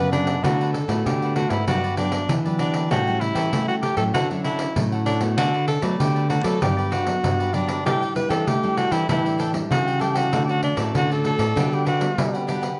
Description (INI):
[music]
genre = samba and choro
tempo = 97 BPM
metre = 4/4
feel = straight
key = D major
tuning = A4 = 437 Hz
[part]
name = breathy alto saxophone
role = melody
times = 0.0-12.5 s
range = D4 to B4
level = -27 LUFS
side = equal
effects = none
[part]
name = cavaquinho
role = accompaniment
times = 0.0-12.8 s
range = D4 to G5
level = -32 LUFS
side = equal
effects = none
[part]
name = nylon-string guitar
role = accompaniment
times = 0.0-12.8 s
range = F#2 to F#4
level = -31 LUFS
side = equal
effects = none
[part]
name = nylon-string guitar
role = bass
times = 0.0-12.8 s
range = G2 to A3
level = -27 LUFS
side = equal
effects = none
[part]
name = pandeiro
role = percussion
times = 0.1-12.8 s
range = none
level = -29 LUFS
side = equal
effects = none
[sound]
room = moderate large studio reverb, RT60 1.1 s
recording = nothing above 10.9 kHz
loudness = -22 LUFS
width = mono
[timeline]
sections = 0.4-12.8 A section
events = none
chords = 0.4 D6; 1.7 Gmaj7; 2.9 A7; 4.1 Dmaj9; 5.4 Bm7/D; 6.6 Gmaj7; 7.9 A7sus4; 10.3 Dmaj7; 11.6 Gmaj7/D